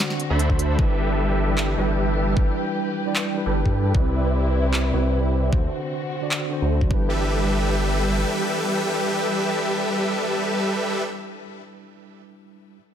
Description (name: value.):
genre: future bass.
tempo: 152 BPM.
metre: 4/4.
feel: half-time.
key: G major.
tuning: A4 = 440 Hz.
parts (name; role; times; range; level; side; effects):
mellow tine electric piano; accompaniment; 0.0-12.8 s; C3 to D5; -28 LUFS; right 2 dB; medium stereo tremolo, sidechain pumping, ping-pong delay.
dark symphonic string section; sustained chords; 0.0-11.0 s; C3 to B4; -32 LUFS; left 2 dB; sidechain pumping.
trap drum kit; drums; 0.0-6.4 s; handclaps, hi-hat, snare drum; -27 LUFS; equal; overdrive.
supersaw chords; riff; 0.3-11.0 s; G3 to B5; -24 LUFS; equal; sidechain pumping, low-pass filter, ping-pong delay.
saturated sub bass; bass; 0.3-8.2 s; G1 to G2; -23 LUFS; equal; sidechain pumping.
electronic kick drum; drums; 0.5-7.0 s; none; -22 LUFS; equal; overdrive.
room: light reverb, digital ambience.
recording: none.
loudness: -20 LUFS.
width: side -9 dB against mid.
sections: 0.0-7.1 A section; 7.1-10.3 B section.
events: filter sweep on supersaw synth 0.0-7.1.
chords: 0.0 D7; 0.8 G6; 3.9 Cmaj7; 5.5 D7; 6.9 G6.